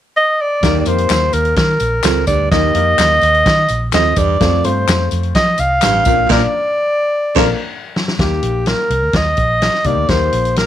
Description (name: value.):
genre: uptempo 1960s-style soul.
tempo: 127 BPM.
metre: 4/4.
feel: straight.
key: Eb major.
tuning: A4 = 440 Hz.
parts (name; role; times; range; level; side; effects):
warm alto saxophone; melody; 0.2-10.7 s; G4 to F5; -15 LUFS; equal; none.
clear upright piano; accompaniment; 0.6-10.7 s; A3 to C5; -22 LUFS; left 12 dB; none.
clear baritone saxophone; riff; 0.6-7.5 s; Eb2 to Bb2; -19 LUFS; right 13 dB; none.
vintage muted fingered electric bass; bass; 0.6-10.6 s; A1 to F3; -18 LUFS; equal; none.
vintage drum kit; drums; 0.6-10.7 s; crash cymbal, hi-hat, kick drum, snare drum; -18 LUFS; equal; none.
tambourine and handclaps; percussion; 0.6-6.2 s; none; -23 LUFS; left 12 dB; none.
warm horn section; second line; 6.3-7.5 s; F3 to Bb4; -22 LUFS; left 10 dB; none.
room: light reverb, small room ambience.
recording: 1960s-style stereo with parts hard left and right.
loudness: -12 LUFS.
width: side -11 dB against mid.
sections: 0.6-8.2 A section; 8.2-10.7 B section.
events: band accent 6.3-8.2; drum fill 7.7-8.2.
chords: 0.0 N.C.; 0.6 Eb; 4.4 F; 6.1 Bb; 8.2 Eb.